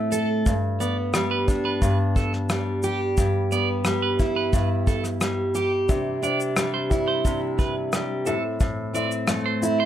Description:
acoustic pop; 88 BPM; 4/4; straight; E minor; A4 = 437 Hz
picked steel-string acoustic guitar; accompaniment; 0.0-9.9 s; G2 to A4; -23 LUFS; equal
clean electric guitar; arpeggios; 0.1-9.9 s; G4 to D5; -29 LUFS; right 6 dB; harmonic tremolo
soft brush drum kit; drums; 0.1-9.8 s; kick drum, rim click, shaker; -26 LUFS; equal
dark upright piano; accompaniment; 5.9-9.9 s; C4 to E5; -29 LUFS; left 2 dB
light reverb; -21 LUFS; side -11 dB against mid
0.0-9.9 A section
0.5 G; 3.2 Em/G; 5.9 Cadd9; 8.3 Am
| 0.46 1.14 1.82 2.50 | 3.18 3.86 4.54 5.22 | 5.89 6.57 7.25 7.93 | 8.61 9.29

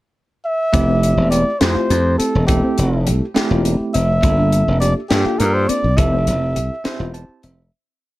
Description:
electric jazz fusion; 69 BPM (dotted quarters); 6/8; straight; F major; A4 = 437 Hz
trumpet with bucket mute; melody; 0.5-7.1 s; G4 to E5; -20 LUFS; equal; plate reverb
bell-like tine electric piano; accompaniment; 0.7-7.7 s; A3 to A5; -22 LUFS; right 2 dB; fast stereo tremolo
slap bass; bass; 0.7-7.7 s; E1 to G2; -17 LUFS; equal
tight funk drum kit; drums; 0.7-7.6 s; hi-hat, kick drum, snare drum; -21 LUFS; equal
mellow electric guitar; stabs; 0.9-7.7 s; C4 to G4; -25 LUFS; left 2 dB; analog chorus
light reverb; -14 LUFS; side -17 dB against mid
0.0-0.7 pickup bar; 0.7-7.7 A section
fade-out 6.0-7.7; tine electric piano fill 6.9-7.7
0.0 N.C.; 0.7 Fmaj9; 4.2 Gm9; 6.0 Fmaj7
| 0.73 1.61 | 2.48 3.36 | 4.23 5.11 | 5.98 6.86

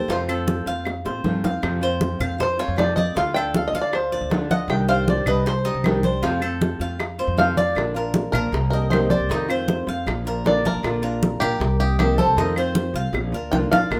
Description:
latin, Cuban son and guajira; 156 BPM; 4/4; straight; Bb major; A4 = 439 Hz
bluegrass banjo; melody; 0.0-14.0 s; G4 to G5; -26 LUFS; equal
nylon-string guitar; accompaniment; 0.0-14.0 s; C3 to G4; -29 LUFS; equal
Cuban tres; arpeggios; 0.0-14.0 s; Eb4 to F5; -31 LUFS; equal
upright bass; bass; 0.0-14.0 s; Bb1 to A2; -28 LUFS; equal
bongos; percussion; 0.1-14.0 s; -31 LUFS; equal
congas; percussion; 0.1-14.0 s; -28 LUFS; equal
claves; percussion; 0.3-14.0 s; -34 LUFS; equal
moderate studio reverb, RT60 0.6 s; -22 LUFS; mono
0.0-7.8 A section; 7.8-14.0 B section
five-string banjo solo 0.0-7.8; drum fill 0.9-1.6, 13.1-13.9
0.1 F; 3.2 Dm; 4.7 Cmadd9; 6.2 F; 7.8 Bb; 8.5 Cm7; 9.3 F7; 10.1 Bb; 11.6 Cm7; 12.4 F7; 13.1 Bb
| 0.10 0.48 0.86 1.25 | 1.63 2.01 2.40 2.78 | 3.16 3.55 3.93 4.31 | 4.70 5.08 5.46 5.84 | 6.23 6.61 6.99 7.38 | 7.76 8.14 8.53 8.91 | 9.29 9.68 10.06 10.45 | 10.83 11.21 11.60 11.98 | 12.37 12.75 13.14 13.52 | 13.90

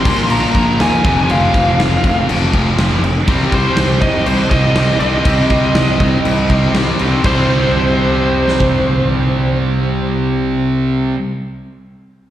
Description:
hard rock; 121 BPM; 4/4; straight; C minor; A4 = 440 Hz
nasal lead guitar with a parked wah; melody; 0.0-11.1 s; C5 to C6; -19 LUFS; right 1 dB; overdrive, slapback echo, analog delay
cranked stack guitar; riff; 0.0-11.2 s; F2 to C4; -20 LUFS; left 5 dB; overdrive
distorted electric guitar; riff; 0.0-11.2 s; F2 to C4; -21 LUFS; right 2 dB; distortion, slapback echo
scooped high-gain guitar; riff; 0.0-11.2 s; F2 to C4; -24 LUFS; right 9 dB; distortion, slapback echo
fuzz picked electric bass; bass; 0.1-11.1 s; F1 to Eb2; -18 LUFS; equal; overdrive
huge arena drum kit; drums; 0.1-8.7 s; crash cymbal, kick drum, snare drum; -17 LUFS; equal
small room ambience; live gig heard through the venue's PA, recital hall reverb; -12 LUFS; side -12 dB against mid
0.0-7.2 A section; 7.2-11.2 B section
0.1 Bb5; 1.1 F5; 3.3 C5
0.31 0.80 | 1.30 1.79 2.29 2.78 | 3.28 3.77 4.27 4.76 | 5.26 5.76 6.25 6.75 | 7.24 7.74 8.23 8.73 | 9.22 9.72 10.22 10.71

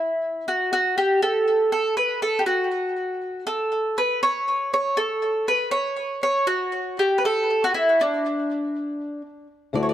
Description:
folk; 120 BPM; 3/4; straight; D major; A4 = 439 Hz
mandolin; melody; 0.0-9.9 s; D4 to D5; -21 LUFS; equal; plate reverb, digital delay
fingerpicked steel-string acoustic guitar; accompaniment; 9.7-9.9 s; D2 to F#4; -21 LUFS; left 3 dB
moderate studio reverb, RT60 0.8 s; dark, warm production; -20 LUFS; side -11 dB against mid
0.0-9.7 A section
0.21 | 0.71 1.22 1.72 | 2.22 2.72 3.22 | 3.73 4.23 4.73 | 5.23 5.73 6.23 | 6.73 7.24 7.74 | 8.24 8.74 9.24 | 9.74

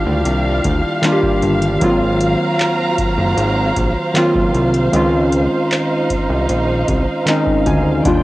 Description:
contemporary R&B; 77 BPM; 4/4; straight; A4 = 440 Hz
warm analog keys; accompaniment; 0.0-8.2 s; Eb3 to Ab5; -16 LUFS; equal; chorus, cassette tape
warm studio string section; sustained chords; 0.0-8.2 s; Gb3 to Bb5; -20 LUFS; right 1 dB; cassette tape
downlifter; sound effects; 0.0-1.8 s; barely audible
fat analog bass; bass; 0.1-8.2 s; Gb1 to Eb2; -18 LUFS; equal
booming analog drum machine; drums; 0.3-8.2 s; handclaps, hi-hat, kick drum; -21 LUFS; equal; cassette tape
digital ambience; home recording on cassette; -13 LUFS; side -17 dB against mid
0.0-8.2 A section
synth keys fill 6.9-8.1
0.0 Ebmaj9; 1.8 Ab13; 4.9 Dbmaj9
0.26 1.04 | 1.82 2.60 3.38 4.15 | 4.93 5.71 6.49 7.27 | 8.05

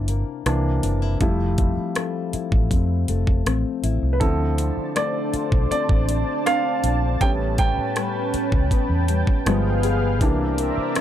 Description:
contemporary R&B; 80 BPM; 4/4; straight; D dorian; A4 = 441 Hz
warm baby grand piano; accompaniment; 0.0-11.0 s; E3 to G5; -26 LUFS; right 3 dB
nylon-string guitar; arpeggios; 0.0-11.0 s; A2 to Ab4; -28 LUFS; left 10 dB; ping-pong delay
vintage muted fingered electric bass; bass; 0.0-10.8 s; F1 to F2; -22 LUFS; equal
smooth R&B drum kit; drums; 0.1-11.0 s; hi-hat, kick drum, rim click; -22 LUFS; equal
lush unison pad; sustained chords; 4.2-11.0 s; B3 to A5; -26 LUFS; right 1 dB; chorus
little or no reverb; dark, warm production; -19 LUFS; side -11 dB against mid
0.0-11.0 A section
grand piano solo 0.0-11.0
0.0 C9; 1.2 Fmaj7; 4.2 Dm7; 7.2 A9; 9.5 G7b9; 10.2 C9
0.46 | 1.21 1.96 2.71 3.46 | 4.21 4.96 5.71 6.46 | 7.21 7.96 8.71 9.46 | 10.21 10.96

